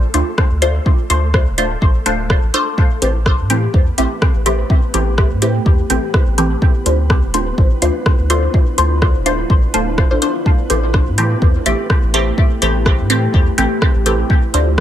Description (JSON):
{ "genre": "dub techno", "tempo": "125 BPM", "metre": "4/4", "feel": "swing 55% on 16ths", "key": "A minor", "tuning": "A4 = 442 Hz", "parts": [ { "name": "soft dub sub bass", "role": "bass", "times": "0.0-14.8 s", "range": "D1 to A2", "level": "-18 LUFS", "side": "equal", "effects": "sidechain pumping" }, { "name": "flickering grainy texture", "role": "texture", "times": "0.0-14.8 s", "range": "A3 to B4", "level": "-31 LUFS", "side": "equal", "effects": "built-in reverb, sidechain pumping" }, { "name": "filtered dub chord stab", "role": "stabs", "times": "0.1-14.7 s", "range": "E3 to C5", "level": "-18 LUFS", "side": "left 1 dB", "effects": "phaser, cassette tape, sidechain pumping, dub echo" }, { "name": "deep house drum kit", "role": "drums", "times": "0.1-14.8 s", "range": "hi-hat, rim click", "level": "-21 LUFS", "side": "right 1 dB", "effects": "none" }, { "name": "electronic kick drum", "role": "drums", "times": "0.4-14.8 s", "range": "none", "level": "-13 LUFS", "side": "equal", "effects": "none" }, { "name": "deep dark ambient pad", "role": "sustained chords", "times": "4.2-14.8 s", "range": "A3 to G4", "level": "-25 LUFS", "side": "equal", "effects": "chorus, built-in reverb, sidechain pumping" } ], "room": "light reverb", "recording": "none", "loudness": "-12 LUFS", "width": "side -11 dB against mid", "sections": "0.0-14.8 A section", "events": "none", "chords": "0.0 Dm7; 2.8 Am7; 6.6 Dm7; 10.5 Am7; 14.3 Dm7" }